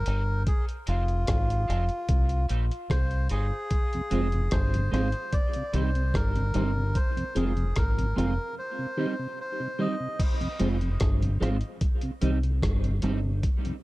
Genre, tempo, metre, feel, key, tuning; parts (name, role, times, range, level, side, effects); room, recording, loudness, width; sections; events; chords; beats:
dub reggae; 74 BPM; 4/4; straight; F minor; A4 = 439 Hz
melodica; melody; 0.0-10.2 s; F4 to Eb5; -33 LUFS; equal; dub echo
deep dub fingered electric bass; bass; 0.0-13.4 s; F1 to C2; -26 LUFS; equal
electric guitar at the edge of break-up; accompaniment; 0.1-13.2 s; G3 to F4; -34 LUFS; right 4 dB; analog chorus, high-pass filter, dub echo
mellow tonewheel organ; accompaniment; 0.1-13.7 s; F2 to C4; -34 LUFS; left 1 dB; overdrive, slow rotary speaker, high-pass filter, dub echo
dusty soul sampler-style drum kit; drums; 0.1-13.8 s; crash cymbal, hi-hat, kick drum, rim click; -28 LUFS; equal; overdrive
little or no reverb; dark, warm production; -24 LUFS; side -19 dB against mid
0.0-10.2 A section; 10.2-13.8 A section
break 8.6-10.2
0.5 Fm; 2.1 Cm; 3.7 Fm; 5.3 Cm; 7.0 Fm; 8.6 Cm; 10.2 Fm; 11.8 Cm
| 0.47 1.28 2.09 2.90 | 3.71 4.52 5.33 6.14 | 6.95 7.76 8.57 9.38 | 10.19 11.00 11.81 12.62 | 13.44